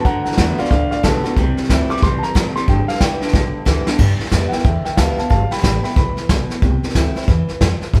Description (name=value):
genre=rockabilly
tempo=183 BPM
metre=4/4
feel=swing 62% on 8ths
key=G mixolydian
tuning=A4 = 440 Hz
part: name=warm upright piano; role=melody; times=0.0-6.6 s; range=A4 to D6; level=-25 LUFS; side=equal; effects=none
part: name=picked steel-string acoustic guitar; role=accompaniment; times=0.0-8.0 s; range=A2 to F#4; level=-27 LUFS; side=equal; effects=none
part: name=electric guitar through a small old amp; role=riff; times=0.0-4.0 s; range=G2 to B3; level=-26 LUFS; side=equal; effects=none
part: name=upright bass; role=bass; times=0.0-8.0 s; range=G1 to G2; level=-22 LUFS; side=equal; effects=none
part: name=vintage brush drum kit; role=drums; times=0.0-8.0 s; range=crash cymbal, hi-hat, kick drum, snare drum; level=-20 LUFS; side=equal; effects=none
room=moderate large studio reverb, RT60 1.2 s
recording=band playing live in one room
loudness=-17 LUFS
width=mono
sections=0.0-4.0 A section; 4.0-8.0 A section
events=drum fill 3.3-4.0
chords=0.0 D6; 1.4 C6; 2.7 G6; 6.6 C6